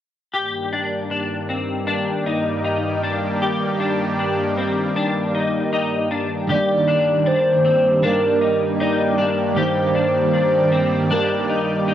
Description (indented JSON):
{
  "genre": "dream pop",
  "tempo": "78 BPM",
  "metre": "4/4",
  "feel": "straight",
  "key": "unclear",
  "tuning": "A4 = 440 Hz",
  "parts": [
    { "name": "lush unison pad", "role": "sustained chords", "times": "0.3-11.9 s", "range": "G2 to D5", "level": "-22 LUFS", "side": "equal", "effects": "chorus" },
    { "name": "clean electric guitar", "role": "arpeggios", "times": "0.3-11.9 s", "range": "C4 to G4", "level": "-24 LUFS", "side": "left 3 dB", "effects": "ensemble chorus, analog delay" },
    { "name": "hollow clarinet-like synth lead", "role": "melody", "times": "6.5-11.9 s", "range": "Bb4 to D5", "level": "-19 LUFS", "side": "equal", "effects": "chorus, analog delay" },
    { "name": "electric guitar at the edge of break-up", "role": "accompaniment", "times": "6.5-11.9 s", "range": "G2 to G4", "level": "-23 LUFS", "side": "right 4 dB", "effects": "tremolo, lush chorus" }
  ],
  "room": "light reverb",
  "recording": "dry, gritty hardware recording, transformer saturation",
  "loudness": "-17 LUFS",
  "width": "side -11 dB against mid",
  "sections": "0.3-6.5 A section; 6.5-11.9 B section",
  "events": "none",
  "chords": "0.3 Ebmaj7/G",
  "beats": "| 0.34 1.11 1.88 2.65 | 3.42 4.19 4.96 5.73 | 6.50 7.27 8.04 8.80 | 9.57 10.34 11.11 11.88"
}